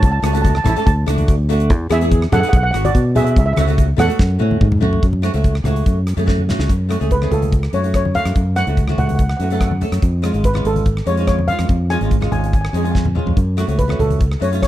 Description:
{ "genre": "calypso", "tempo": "144 BPM", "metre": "4/4", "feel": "straight", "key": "F# minor, F# harmonic minor from 6.7 s", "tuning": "A4 = 440 Hz", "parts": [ { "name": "steel pan", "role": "melody", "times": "0.0-14.7 s", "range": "F#4 to A5", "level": "-21 LUFS", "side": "right 1 dB", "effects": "none" }, { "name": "flamenco guitar", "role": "accompaniment", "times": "0.0-14.7 s", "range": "G#3 to A4", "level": "-23 LUFS", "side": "right 1 dB", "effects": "double-tracked left and right" }, { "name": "fingered electric bass", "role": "bass", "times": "0.0-14.7 s", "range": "G#1 to B2", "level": "-17 LUFS", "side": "equal", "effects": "none" }, { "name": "gated 80s drum kit", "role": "drums", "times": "0.0-14.7 s", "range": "hi-hat, kick drum, rim click, snare drum, toms", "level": "-19 LUFS", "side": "equal", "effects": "none" }, { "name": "congas", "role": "percussion", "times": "0.4-14.2 s", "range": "none", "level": "-23 LUFS", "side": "left 2 dB", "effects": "none" } ], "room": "little or no reverb", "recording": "none", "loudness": "-14 LUFS", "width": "side -14 dB against mid", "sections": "0.0-5.0 A section; 5.0-6.7 B section; 6.7-14.7 C section", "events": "drum fill 4.2-5.0, 6.3-6.7, 12.9-13.4", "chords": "0.0 F#m/C#; 0.9 D; 1.7 E; 2.5 Bm; 3.4 F#m/C#; 4.2 F#m; 10.0 C#; 13.4 F#m" }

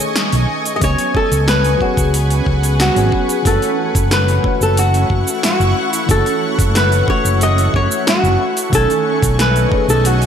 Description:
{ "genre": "sunset chillout", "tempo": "91 BPM", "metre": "4/4", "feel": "straight", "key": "F# dorian", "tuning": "A4 = 440 Hz", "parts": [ { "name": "flamenco guitar", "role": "melody", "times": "0.0-10.3 s", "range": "F#4 to D#5", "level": "-18 LUFS", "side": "left 1 dB", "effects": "ping-pong delay" }, { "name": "soft electric-piano-like synth keys", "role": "accompaniment", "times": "0.0-10.3 s", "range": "D#3 to G#5", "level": "-22 LUFS", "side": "equal", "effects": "chorus, phaser, auto-pan, digital delay" }, { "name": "shimmering ambient pad", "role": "sustained chords", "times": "0.0-10.3 s", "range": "A3 to C#6", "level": "-23 LUFS", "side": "equal", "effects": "chorus, built-in reverb" }, { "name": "deep house drum kit", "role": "drums", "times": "0.0-10.3 s", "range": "cabasa, hi-hat, snare drum", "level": "-20 LUFS", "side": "right 1 dB", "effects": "overdrive, gated reverb" }, { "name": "mellow fretless electric bass", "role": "bass", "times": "0.3-10.3 s", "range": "F#1 to C#2", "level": "-16 LUFS", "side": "equal", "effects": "tube saturation" }, { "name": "electronic kick drum", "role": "drums", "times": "0.8-9.9 s", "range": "none", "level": "-19 LUFS", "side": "equal", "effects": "none" } ], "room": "light reverb, digital ambience", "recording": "bright 1980s-style digital production", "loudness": "-12 LUFS", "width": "side -8 dB against mid", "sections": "0.0-3.5 A section; 3.5-10.3 B section", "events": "none", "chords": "0.0 B13; 0.8 C#7sus4; 3.5 F#m7; 8.4 B13" }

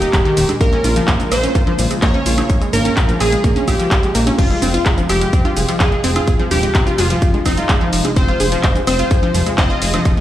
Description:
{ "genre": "progressive house", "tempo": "127 BPM", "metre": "4/4", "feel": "straight", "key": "F minor", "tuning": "A4 = 435 Hz", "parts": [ { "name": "plucky unison lead", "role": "melody", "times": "0.0-10.2 s", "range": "Eb4 to Eb5", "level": "-21 LUFS", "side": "equal", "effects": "sidechain pumping, tape echo" }, { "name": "glassy wavetable pluck", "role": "second line", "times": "0.0-10.2 s", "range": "Eb4 to Eb5", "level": "-28 LUFS", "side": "equal", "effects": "none" }, { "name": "warm analog pad", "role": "sustained chords", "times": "0.0-10.2 s", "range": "Bb2 to F4", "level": "-25 LUFS", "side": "equal", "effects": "chorus, sidechain pumping" }, { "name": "wide unison pluck", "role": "arpeggios", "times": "0.0-10.2 s", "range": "Eb3 to Ab4", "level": "-20 LUFS", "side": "equal", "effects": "sidechain pumping, tape echo" }, { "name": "fat analog bass", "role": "bass", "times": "0.0-10.1 s", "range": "Eb1 to Bb2", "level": "-21 LUFS", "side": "equal", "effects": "sidechain pumping" }, { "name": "house drum kit", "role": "drums", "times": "0.0-10.2 s", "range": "crash cymbal, handclaps, hi-hat, shaker, woodblock", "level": "-22 LUFS", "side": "equal", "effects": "sidechain pumping on hats, small room ambience, sidechain pumping on perc, sidechain pumping on cymbals" }, { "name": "congas and woodblock", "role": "percussion", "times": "0.0-10.2 s", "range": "none", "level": "-28 LUFS", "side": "equal", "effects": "sidechain pumping on perc, small room ambience" }, { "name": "electronic kick drum", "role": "drums", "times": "0.1-10.2 s", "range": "none", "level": "-16 LUFS", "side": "equal", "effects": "small room ambience" } ], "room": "light reverb", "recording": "played on a big sound system in a bare room, stone room reverb", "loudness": "-13 LUFS", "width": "side -12 dB against mid", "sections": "0.0-10.2 A section", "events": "none", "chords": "0.0 Ebsus4; 0.6 Bbm7; 4.4 Fm" }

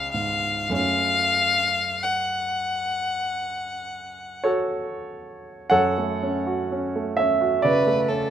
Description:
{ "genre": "classical, romantic duo for violin and grand piano", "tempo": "43-67 BPM", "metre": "4/4", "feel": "rubato", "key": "F# minor", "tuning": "A4 = 439 Hz", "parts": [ { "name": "rich violin", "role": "melody", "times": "0.0-8.3 s", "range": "A4 to F#5", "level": "-23 LUFS", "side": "left 3 dB", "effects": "none" }, { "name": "warm grand piano", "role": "accompaniment", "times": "0.0-8.3 s", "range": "C#2 to F#5", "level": "-23 LUFS", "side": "right 2 dB", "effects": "none" } ], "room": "light reverb", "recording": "close, detailed microphones", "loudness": "-21 LUFS", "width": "side -9 dB against mid", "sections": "0.0-5.7 A section; 5.7-8.3 B section", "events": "none", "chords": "0.0 C#; 0.7 F#m" }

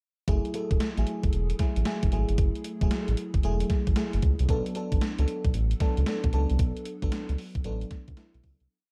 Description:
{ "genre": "R&B, new jack swing", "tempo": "114 BPM", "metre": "4/4", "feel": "swing 65% on 16ths", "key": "F# minor", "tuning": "A4 = 440 Hz", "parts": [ { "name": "FM electric piano with soft pad layer", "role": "accompaniment", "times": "0.3-8.7 s", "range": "F#3 to A4", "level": "-35 LUFS", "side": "equal", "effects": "chorus, phaser" }, { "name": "round analog bass", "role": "bass", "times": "0.3-8.7 s", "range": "E1 to C#2", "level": "-29 LUFS", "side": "equal", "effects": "none" }, { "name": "gated 80s digital drum machine", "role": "drums", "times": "0.3-8.7 s", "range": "hi-hat, kick drum, snare drum", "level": "-30 LUFS", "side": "equal", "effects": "gated reverb, gated reverb snare, overdrive" } ], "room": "little or no reverb", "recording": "dark, warm production", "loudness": "-27 LUFS", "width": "mono", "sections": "0.3-8.7 verse", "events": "fade-out 6.6-8.7", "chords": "0.3 F#m9; 4.5 Bm7" }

